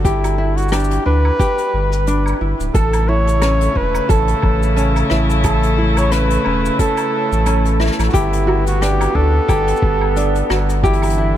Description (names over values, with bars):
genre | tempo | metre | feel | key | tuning
folktronica | 89 BPM | 4/4 | swing 56% on 16ths | unclear | A4 = 440 Hz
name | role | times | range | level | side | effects
clear flugelhorn | melody | 0.0-11.4 s | E4 to C#5 | -20 LUFS | equal | diffuse ambient delay
tenor ukulele | arpeggios | 0.0-11.4 s | C#4 to A4 | -22 LUFS | equal | diffuse ambient delay
warm sub bass | bass | 0.0-11.4 s | D1 to D2 | -17 LUFS | equal | none
electronic kick drum | drums | 0.0-11.0 s | none | -18 LUFS | equal | none
jazz brush drum kit | drums | 0.0-11.2 s | hi-hat, rim click, shaker, woodblock | -28 LUFS | left 2 dB | none
rich string quartet | sustained chords | 2.7-11.4 s | C#3 to E4 | -22 LUFS | equal | none
room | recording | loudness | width
moderate huge ambient reverb, RT60 8.1 s | dreamy mix soaked in reverb | -14 LUFS | side -11 dB against mid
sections
0.0-11.4 A section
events
none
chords
0.0 Em7/G; 2.7 A; 8.1 Gmaj7; 10.8 Em7/G